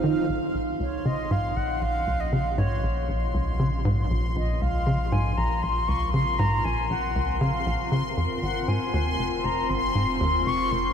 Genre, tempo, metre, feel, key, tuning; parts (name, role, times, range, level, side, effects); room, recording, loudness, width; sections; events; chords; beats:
ambient, sequencer-driven space music; 118 BPM; 4/4; straight; Bb minor; A4 = 439 Hz
phased analog pad; sustained chords; 0.0-10.9 s; Bb2 to Bb4; -31 LUFS; right 1 dB; phaser, chorus, shimmer reverb
tight sequencer bass; riff; 0.0-10.9 s; F1 to Eb3; -27 LUFS; equal; lush chorus, tape echo
warm sub bass; bass; 0.0-10.9 s; F1 to Bb1; -30 LUFS; equal
bubbling stepped-filter texture; texture; 0.0-10.9 s; F5 to C6; -33 LUFS; left 2 dB; chorus, built-in reverb, shimmer reverb
mellow concert flute; melody; 0.8-10.9 s; Db5 to Db6; -29 LUFS; left 1 dB; shimmer reverb, tape echo
moderate huge ambient reverb, RT60 7.7 s; faint mains hum; -23 LUFS; side -8 dB against mid
0.3-10.9 A section
fade-in on analog synth pad 0.3-10.9
0.3 Bbm; 8.4 Fsus4
| 0.29 0.80 1.31 1.81 | 2.32 2.83 3.34 3.85 | 4.36 4.87 5.37 5.88 | 6.39 6.90 7.41 7.92 | 8.43 8.93 9.44 9.95 | 10.46